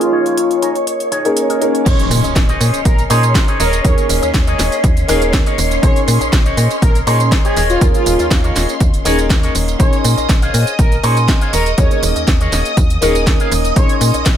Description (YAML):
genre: filtered disco house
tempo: 121 BPM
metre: 4/4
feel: straight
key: Bb minor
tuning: A4 = 440 Hz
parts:
  - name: analog synth brass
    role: melody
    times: 0.0-13.9 s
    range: F4 to Db5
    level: -20 LUFS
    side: equal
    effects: chorus, sidechain pumping, low-pass filter, digital delay
  - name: warm grand piano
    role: accompaniment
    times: 0.0-14.4 s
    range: Bb3 to C6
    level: -19 LUFS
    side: equal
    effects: phaser, vintage 12-bit sampler grit, sidechain pumping, low-pass filter
  - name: phased string machine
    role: sustained chords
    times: 0.0-14.4 s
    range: Db4 to Eb6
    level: -23 LUFS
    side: equal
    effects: ensemble chorus, phaser, sidechain pumping, low-pass filter
  - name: electric guitar with an envelope filter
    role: riff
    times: 0.0-14.3 s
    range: Eb4 to F5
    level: -23 LUFS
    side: left 2 dB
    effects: wide subtle chorus, sidechain pumping, low-pass filter
  - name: house drum kit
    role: drums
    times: 0.0-14.4 s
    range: crash cymbal, hi-hat, snare drum, tambourine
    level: -21 LUFS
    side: right 1 dB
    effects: sidechain pumping on hats, sidechain pumping on cymbals, sidechain pumping on perc
  - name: slap-like FM bass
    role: bass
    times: 1.9-14.4 s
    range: Eb1 to Bb2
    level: -17 LUFS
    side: equal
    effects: tube saturation, sidechain pumping, low-pass filter
  - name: electronic kick drum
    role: drums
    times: 1.9-14.4 s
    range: none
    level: -14 LUFS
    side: equal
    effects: overdrive
  - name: impact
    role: sound effects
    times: 1.9-3.8 s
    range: none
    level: -24 LUFS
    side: equal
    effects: none
room: light reverb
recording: none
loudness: -11 LUFS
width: side -10 dB against mid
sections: 0.0-1.9 A section; 1.9-14.4 B section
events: filter sweep 0.0-1.9; drop 1.9-14.4; impact 1.9-3.8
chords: 0.0 Bbm11; 3.6 Eb7sus4; 5.8 Bbm11; 7.6 Eb7sus4; 9.8 Bbm11; 11.5 Eb7sus4; 13.8 Bbm11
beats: 0.38 0.87 1.37 | 1.86 2.36 2.85 3.35 | 3.85 4.34 4.84 5.33 | 5.83 6.33 6.82 7.32 | 7.81 8.31 8.80 9.30 | 9.80 10.29 10.79 11.28 | 11.78 12.28 12.77 13.27 | 13.76 14.26